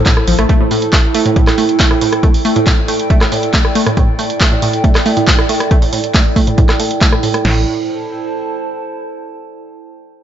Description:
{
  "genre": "driving peak-time techno",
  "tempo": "138 BPM",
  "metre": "4/4",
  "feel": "straight",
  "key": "A minor",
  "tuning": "A4 = 440 Hz",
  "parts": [
    { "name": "dark detuned saw bass", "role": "bass", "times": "0.0-0.5, 7.4-7.7 s", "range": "A1", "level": "-16 LUFS", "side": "equal", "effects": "sidechain pumping" },
    { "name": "warbly tape-like pad", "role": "texture", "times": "0.0-9.1 s", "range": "E4 to A5", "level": "-18 LUFS", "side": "right 3 dB", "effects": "chorus, built-in reverb, sidechain pumping" },
    { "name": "analog pluck", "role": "riff", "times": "0.1-7.7 s", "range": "A2 to A3", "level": "-17 LUFS", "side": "right 1 dB", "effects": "chorus, sidechain pumping, tape echo" },
    { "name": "punchy analog drum machine", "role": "drums", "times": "0.1-7.6 s", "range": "crash cymbal, kick drum, snare drum", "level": "-12 LUFS", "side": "equal", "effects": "none" },
    { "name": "punchy analog drum machine", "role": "drums", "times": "0.1-7.4 s", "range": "handclaps, hi-hat, rim click", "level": "-17 LUFS", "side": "equal", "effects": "none" }
  ],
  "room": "moderate plate reverb, RT60 1.6 s, digital ambience",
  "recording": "dreamy mix soaked in reverb, nothing above 7.6 kHz",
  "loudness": "-10 LUFS",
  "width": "side -10 dB against mid",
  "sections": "0.0-7.4 A section; 7.4-9.2 B section",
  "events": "filter sweep on synth arpeggio sound 0.0-7.4",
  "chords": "0.0 Am"
}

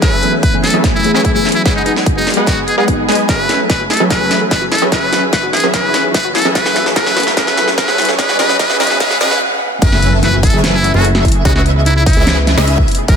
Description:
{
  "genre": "future bass",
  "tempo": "147 BPM",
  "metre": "4/4",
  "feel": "half-time",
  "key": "F# dorian",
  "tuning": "A4 = 440 Hz",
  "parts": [
    { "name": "trumpet with metal mute", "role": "melody", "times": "0.0-13.2 s", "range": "D#4 to B4", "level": "-17 LUFS", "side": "equal", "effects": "sidechain pumping, dub echo" },
    { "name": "rich symphonic string section", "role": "sustained chords", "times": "0.0-13.2 s", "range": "B2 to G#5", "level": "-26 LUFS", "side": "equal", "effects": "none" },
    { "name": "supersaw stab", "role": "riff", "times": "0.0-13.2 s", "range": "F#3 to G#5", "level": "-17 LUFS", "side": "equal", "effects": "sidechain pumping, low-pass filter" },
    { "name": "big-room dance drum kit", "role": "drums", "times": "0.0-13.2 s", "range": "crash cymbal, hi-hat, snare drum", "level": "-18 LUFS", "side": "equal", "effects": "high-pass filter on snare, high-pass filter on hats, high-pass filter on cymbals" },
    { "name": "electronic kick drum", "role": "drums", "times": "0.0-13.2 s", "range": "none", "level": "-15 LUFS", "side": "equal", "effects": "none" },
    { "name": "soft round pluck", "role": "accompaniment", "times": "0.2-3.0 s", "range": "E3 to G#4", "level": "-18 LUFS", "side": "left 2 dB", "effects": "analog chorus, sidechain pumping, tape echo" },
    { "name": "wide unison pluck", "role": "arpeggios", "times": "3.3-13.1 s", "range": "D#4 to C#5", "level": "-24 LUFS", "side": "moving between left 6 dB and right 5 dB", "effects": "auto-pan, sidechain pumping, tape echo" },
    { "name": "riser and impact", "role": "sound effects", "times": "4.8-11.5 s", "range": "none", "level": "-22 LUFS", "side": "right 1 dB", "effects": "none" },
    { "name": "airy dreamy lead", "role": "arpeggios", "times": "9.8-13.2 s", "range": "E5", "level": "-24 LUFS", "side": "equal", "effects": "chorus, sidechain pumping, tape echo" },
    { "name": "fat analog bass", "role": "bass", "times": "9.8-13.2 s", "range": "F#1 to C#2", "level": "-14 LUFS", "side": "equal", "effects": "sidechain pumping" }
  ],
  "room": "light reverb",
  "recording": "dense, heavily limited modern master, high-pass filter",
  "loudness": "-10 LUFS",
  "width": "side -7 dB against mid",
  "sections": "0.0-9.8 A section; 9.8-13.2 B section",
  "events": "build-up 0.0-9.8; drum fill 0.0-9.4; filter sweep on supersaw synth 0.0-9.8; filter sweep 0.0-9.8; riser 4.8-9.4; break 9.4-9.8; drop 9.8-13.2; impact 9.8-11.5",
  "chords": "0.0 F#m11; 1.7 G#m7; 3.3 F#m11; 4.9 C#m9; 6.3 F#m11; 8.2 G#m7; 9.8 F#m11; 11.5 C#m9"
}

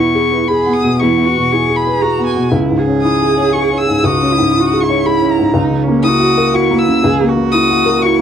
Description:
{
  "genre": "neoclassical piano and strings",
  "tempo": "119 BPM",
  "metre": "3/4",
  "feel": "rubato",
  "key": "unclear",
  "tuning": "A4 = 441 Hz",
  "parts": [
    { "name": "rich violin", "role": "melody", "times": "0.0-8.2 s", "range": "G#5 to E6", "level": "-17 LUFS", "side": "left 4 dB", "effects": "none" },
    { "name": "dark cello", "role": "second line", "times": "0.0-8.2 s", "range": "C#4 to G#4", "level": "-17 LUFS", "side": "right 12 dB", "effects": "none" },
    { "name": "felt-muted upright piano", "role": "accompaniment", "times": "0.0-8.2 s", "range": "C#2 to C#5", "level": "-14 LUFS", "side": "left 2 dB", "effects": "none" }
  ],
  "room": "light reverb",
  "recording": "dry, close 1970s-style studio recording",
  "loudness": "-11 LUFS",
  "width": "side -8 dB against mid",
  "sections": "0.0-8.2 A section",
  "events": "none",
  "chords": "0.0 E; 2.5 C#m; 5.6 F#7/C#"
}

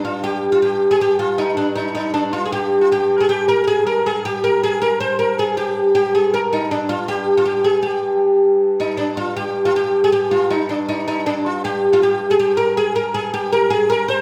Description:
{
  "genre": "medieval",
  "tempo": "158 BPM",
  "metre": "3/4",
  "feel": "straight",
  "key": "G phrygian",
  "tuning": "A4 = 442 Hz",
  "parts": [
    { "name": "sitar", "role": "melody", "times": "0.0-14.2 s", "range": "D4 to C5", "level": "-19 LUFS", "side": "equal", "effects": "none" },
    { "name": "oud", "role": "second line", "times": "0.0-14.2 s", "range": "D4 to C5", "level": "-24 LUFS", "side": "equal", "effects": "slapback echo" },
    { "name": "dark hurdy-gurdy", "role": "drone", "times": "0.0-14.2 s", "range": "G2", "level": "-31 LUFS", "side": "equal", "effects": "none" }
  ],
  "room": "moderate recital hall reverb, RT60 1.4 s",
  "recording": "none",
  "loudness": "-18 LUFS",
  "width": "mono",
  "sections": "0.0-9.0 A section; 9.0-14.2 A section",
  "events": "none",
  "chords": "none"
}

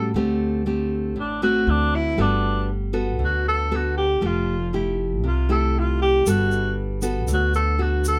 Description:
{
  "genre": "bossa nova",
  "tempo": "118 BPM",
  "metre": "4/4",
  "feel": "straight",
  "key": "G major",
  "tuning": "A4 = 439 Hz",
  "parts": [
    { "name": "breathy tenor saxophone", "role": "melody", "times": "0.0-8.2 s", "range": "D4 to A4", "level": "-25 LUFS", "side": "equal", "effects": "none" },
    { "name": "nylon-string guitar", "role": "accompaniment", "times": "0.0-8.2 s", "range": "A2 to A4", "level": "-27 LUFS", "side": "equal", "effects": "none" },
    { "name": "upright bass", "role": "bass", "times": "0.0-8.2 s", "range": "F1 to A2", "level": "-27 LUFS", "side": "equal", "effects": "none" },
    { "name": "tube shaker", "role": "percussion", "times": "6.3-8.2 s", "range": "none", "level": "-37 LUFS", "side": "equal", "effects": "none" }
  ],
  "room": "light reverb",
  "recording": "none",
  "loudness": "-22 LUFS",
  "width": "mono",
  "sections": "0.0-8.2 A section",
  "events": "tenor saxophone solo 0.0-8.2",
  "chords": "0.1 D7sus4; 1.7 D7; 2.2 Gmaj9; 4.2 Fmaj9; 6.3 Gmaj9"
}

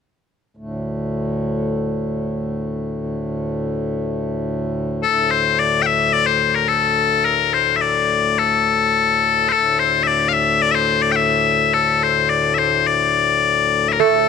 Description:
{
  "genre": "medieval dance",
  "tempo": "107 BPM",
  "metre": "2/4",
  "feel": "straight",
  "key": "unclear",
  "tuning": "A4 = 440 Hz",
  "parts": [
    { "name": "pedal harmonium", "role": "drone", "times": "0.6-14.3 s", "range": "D2 to A2", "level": "-22 LUFS", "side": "equal", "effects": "none" },
    { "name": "loud bright bagpipes", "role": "melody", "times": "5.0-14.3 s", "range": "A4 to G5", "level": "-15 LUFS", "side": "left 8 dB", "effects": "none" },
    { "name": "lute", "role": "second line", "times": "14.0-14.3 s", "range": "A3", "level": "-14 LUFS", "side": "right 14 dB", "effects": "none" }
  ],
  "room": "moderate plate reverb, RT60 2.7 s",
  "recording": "1960s-style stereo with parts hard left and right",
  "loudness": "-16 LUFS",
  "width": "side -6 dB against mid",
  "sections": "0.6-5.0 A section; 5.0-14.0 B section",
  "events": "none",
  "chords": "none"
}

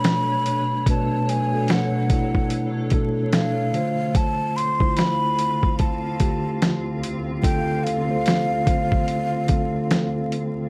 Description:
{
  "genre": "lo-fi hip hop",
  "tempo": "73 BPM",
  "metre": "4/4",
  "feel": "swing 59% on 16ths",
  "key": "unclear",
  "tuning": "A4 = 439 Hz",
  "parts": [
    { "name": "breathy mellow jazz flute", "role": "melody", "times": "0.0-10.3 s", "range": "E#5 to C6", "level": "-28 LUFS", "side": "equal", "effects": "plate reverb" },
    { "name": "mellow tine electric piano", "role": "accompaniment", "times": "0.0-10.7 s", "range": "B2 to C#5", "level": "-26 LUFS", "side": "equal", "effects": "cassette tape" },
    { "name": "granular cloud pad", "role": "sustained chords", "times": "0.0-10.7 s", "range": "D2 to F5", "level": "-36 LUFS", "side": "equal", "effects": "built-in reverb, plate reverb" },
    { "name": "dusty soul sampler-style drum kit", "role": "drums", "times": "0.0-10.5 s", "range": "hi-hat, kick drum, snare drum", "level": "-24 LUFS", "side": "equal", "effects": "overdrive" }
  ],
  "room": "moderate studio ambience, RT60 0.5 s",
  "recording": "vinyl crackle",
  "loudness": "-22 LUFS",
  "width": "mono",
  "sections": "0.0-10.7 A section",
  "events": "none",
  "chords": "0.0 Bm7; 3.7 Dm7"
}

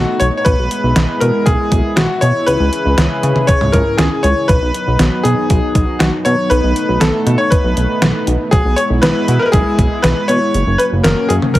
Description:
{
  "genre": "synth-pop",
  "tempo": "119 BPM",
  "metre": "4/4",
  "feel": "straight",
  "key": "B major",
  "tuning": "A4 = 439 Hz",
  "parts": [
    { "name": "bright concert grand piano", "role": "melody", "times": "0.0-11.6 s", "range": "F#4 to C#5", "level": "-16 LUFS", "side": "left 1 dB", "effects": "slapback echo" },
    { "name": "chorused pulse-width pad", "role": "sustained chords", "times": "0.0-11.6 s", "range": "C#3 to G#4", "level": "-20 LUFS", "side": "equal", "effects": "none" },
    { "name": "chorused synth bass", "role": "bass", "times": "0.0-11.4 s", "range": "F#1 to C#3", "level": "-15 LUFS", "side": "equal", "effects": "none" },
    { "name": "detuned 8-bit digital drum machine", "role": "drums", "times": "0.2-11.6 s", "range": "hi-hat, kick drum, snare drum, toms", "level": "-16 LUFS", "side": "equal", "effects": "overdrive" }
  ],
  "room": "light reverb",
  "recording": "heavily compressed radio sound",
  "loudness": "-11 LUFS",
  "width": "side -15 dB against mid",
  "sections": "0.0-11.6 A section",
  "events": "none",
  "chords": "0.5 E/B; 2.5 C#m; 4.5 B; 6.5 B7; 8.5 E/B; 10.5 F#"
}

